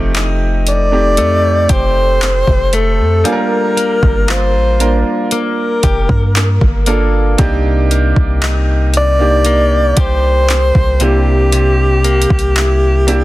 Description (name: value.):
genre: contemporary R&B.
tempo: 58 BPM.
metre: 4/4.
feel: straight.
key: unclear.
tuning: A4 = 443 Hz.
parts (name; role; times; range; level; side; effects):
warm grand piano; accompaniment; 0.0-13.2 s; A3 to C5; -19 LUFS; right 3 dB; none.
direct-recorded clean electric guitar; arpeggios; 0.0-13.2 s; C3 to G4; -20 LUFS; left 5 dB; none.
warm 808-style bass; bass; 0.0-13.2 s; F1 to G2; -14 LUFS; equal; none.
smooth R&B drum kit; drums; 0.1-13.2 s; handclaps, hi-hat, kick drum; -16 LUFS; equal; overdrive.
breathy alto saxophone; melody; 0.7-13.2 s; G4 to D5; -15 LUFS; equal; digital delay.
room: little or no reverb.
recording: dense, heavily limited modern master.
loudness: -10 LUFS.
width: side -17 dB against mid.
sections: 0.0-13.2 A section.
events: none.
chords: 0.0 F9; 3.3 Gm9; 7.4 Cm7; 11.0 C7.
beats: 0.15 1.18 2.22 | 3.25 4.29 5.32 6.36 | 7.39 8.42 9.46 10.49 | 11.53 12.56.